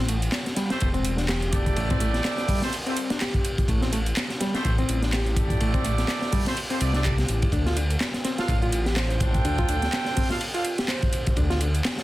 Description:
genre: breakbeat, breaks.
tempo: 125 BPM.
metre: 4/4.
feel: swing 57% on 16ths.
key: A minor.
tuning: A4 = 442 Hz.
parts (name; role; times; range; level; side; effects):
bright reed electric piano; riff; 0.0-11.7 s; G3 to C5; -30 LUFS; equal; fast tremolo, overdrive, digital delay.
dark detuned saw bass; bass; 0.0-11.8 s; E1 to D2; -25 LUFS; equal; none.
crunchy breakbeat drum kit; drums; 0.1-12.0 s; hi-hat, kick drum, ride cymbal, snare drum; -26 LUFS; equal; none.
garage drum kit; drums; 0.1-12.0 s; handclaps, hi-hat; -33 LUFS; right 1 dB; overdrive.
bright horn section; stabs; 0.7-10.6 s; A3 to G5; -31 LUFS; right 3 dB; digital delay.
room: light reverb.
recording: dense, heavily limited modern master.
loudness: -22 LUFS.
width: side -16 dB against mid.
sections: 0.0-12.0 A section.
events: none.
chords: 0.0 Am7; 7.5 Dm7.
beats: 0.33 0.81 1.29 | 1.77 2.25 2.73 3.21 | 3.69 4.17 4.65 5.13 | 5.61 6.09 6.57 7.05 | 7.53 8.01 8.49 8.97 | 9.45 9.93 10.41 10.89 | 11.37 11.85.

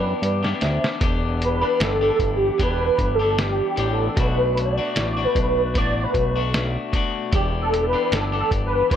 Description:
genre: indie pop, bedroom pop.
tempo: 76 BPM.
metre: 4/4.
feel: swing 55% on 16ths.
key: E minor.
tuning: A4 = 440 Hz.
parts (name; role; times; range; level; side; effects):
warm velvety synth lead; melody; 0.0-9.0 s; G4 to D5; -22 LUFS; right 1 dB; ensemble chorus, slapback echo.
vibraphone with medium mallets; second line; 0.0-0.8 s; B4 to E5; -29 LUFS; right 2 dB; analog chorus, slapback echo.
electric guitar at the edge of break-up; accompaniment; 0.0-9.0 s; B2 to G4; -27 LUFS; left 5 dB; lush chorus, warbly pitch drift.
fat analog bass; bass; 0.0-9.0 s; E1 to G2; -24 LUFS; equal; none.
lo-fi sampler-style drum kit; drums; 0.2-9.0 s; hi-hat, kick drum, snare drum; -24 LUFS; equal; none.
room: light reverb.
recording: none.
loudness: -19 LUFS.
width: side -9 dB against mid.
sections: 0.0-1.0 A section; 1.0-9.0 B section.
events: drum fill 0.2-1.0; soft synth lead solo 1.0-9.0.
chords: 0.0 Em7; 4.2 Bm7; 7.3 Em7.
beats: 0.22 | 1.01 1.80 2.59 3.38 | 4.17 4.96 5.75 6.54 | 7.33 8.12 8.90.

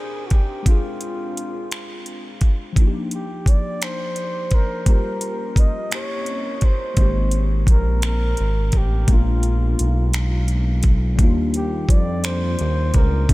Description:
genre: slow six-eight R&B.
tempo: 57 BPM (dotted quarters).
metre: 6/8.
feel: straight.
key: unclear.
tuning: A4 = 440 Hz.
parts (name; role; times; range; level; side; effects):
breathy flugelhorn; melody; 0.0-13.3 s; F4 to Eb5; -28 LUFS; equal; diffuse ambient delay.
tine electric piano; accompaniment; 0.0-13.3 s; F3 to Bb4; -28 LUFS; left 3 dB; analog chorus.
smooth R&B drum kit; drums; 0.3-13.3 s; finger snaps, hi-hat, kick drum; -19 LUFS; equal; none.
smooth synth bass; bass; 7.0-13.3 s; Ab1 to F2; -19 LUFS; equal; none.
room: light reverb.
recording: none.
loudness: -17 LUFS.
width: side -19 dB against mid.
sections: 0.0-13.3 A section.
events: none.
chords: 0.0 Cm7; 0.7 Dm7b5; 2.8 Ebmaj7; 4.9 Gm7b5; 5.9 C7b9; 7.0 Abmaj7; 9.1 Bb7b9; 11.2 Ebmaj9.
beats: | 0.66 1.71 | 2.77 3.82 | 4.87 5.92 | 6.98 8.03 | 9.08 10.13 | 11.19 12.24 | 13.29.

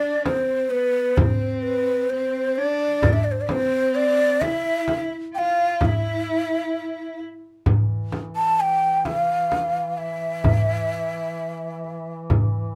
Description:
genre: Turkish makam ensemble.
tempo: 129 BPM (eighths).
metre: 10/8.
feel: straight.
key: E makam kurdi.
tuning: A4 = 440 Hz.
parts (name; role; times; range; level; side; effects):
breathy mellow ney; melody; 0.0-12.2 s; B4 to A5; -24 LUFS; equal; none.
clear cello; second line; 0.0-7.2 s; B3 to F4; -30 LUFS; equal; none.
darbuka; percussion; 0.3-12.5 s; none; -26 LUFS; equal; none.
frame drum; percussion; 0.3-12.5 s; none; -26 LUFS; equal; none.
warm duduk; drone; 7.7-12.8 s; E3; -36 LUFS; equal; none.
room: wet small room reverb, RT60 0.5 s.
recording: band playing live in one room.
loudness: -22 LUFS.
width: mono.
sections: 0.0-7.7 A section; 7.7-12.8 B section.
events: none.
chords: none.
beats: 0.25 0.71 1.18 1.64 2.10 2.57 | 3.03 3.49 3.96 4.42 4.88 5.35 5.81 6.27 6.74 7.20 | 7.66 8.13 8.59 9.05 9.52 9.98 10.45 10.91 11.38 11.84 | 12.30.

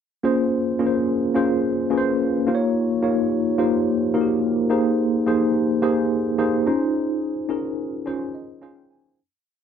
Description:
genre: pop.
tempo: 107 BPM.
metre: 4/4.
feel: straight.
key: Bb dorian.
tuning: A4 = 440 Hz.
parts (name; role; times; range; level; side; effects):
tine electric piano; solo; 0.2-9.2 s; Bb3 to Ab5; -19 LUFS; equal; medium stereo tremolo, lush chorus.
room: little or no reverb.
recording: dry, close 1970s-style studio recording.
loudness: -19 LUFS.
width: side -8 dB against mid.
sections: 0.2-9.2 verse.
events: fade-out 6.9-9.2; tine electric piano fill 8.1-9.2.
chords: 0.2 Bbm7; 2.5 Eb9; 4.7 Abmaj7; 6.7 Dbmaj9.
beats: | 0.24 0.80 1.36 1.92 | 2.48 3.04 3.59 4.15 | 4.71 5.27 5.83 6.39 | 6.95 7.50 8.06 8.62.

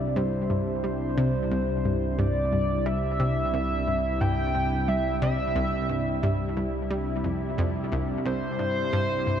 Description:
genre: ambient, sequencer-driven space music.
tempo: 89 BPM.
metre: 4/4.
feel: straight.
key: C major.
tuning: A4 = 438 Hz.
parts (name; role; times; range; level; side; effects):
pulse-width lead; melody; 0.0-9.4 s; C5 to G5; -30 LUFS; equal; chorus, analog delay.
lush unison pad; sustained chords; 0.0-9.4 s; C3 to G4; -28 LUFS; equal; chorus.
analog pluck; riff; 0.0-9.4 s; C2 to G3; -29 LUFS; equal; chorus, cassette tape, analog delay.
round analog bass; bass; 0.0-9.4 s; C2; -34 LUFS; equal; none.
room: wet cathedral reverb, RT60 5.6 s.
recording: in a vast, echoing space.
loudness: -24 LUFS.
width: side -9 dB against mid.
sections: 0.0-9.4 A section.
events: none.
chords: 0.0 C.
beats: | 0.16 0.84 1.51 2.19 | 2.86 3.54 4.21 4.88 | 5.56 6.23 6.91 7.58 | 8.25 8.93.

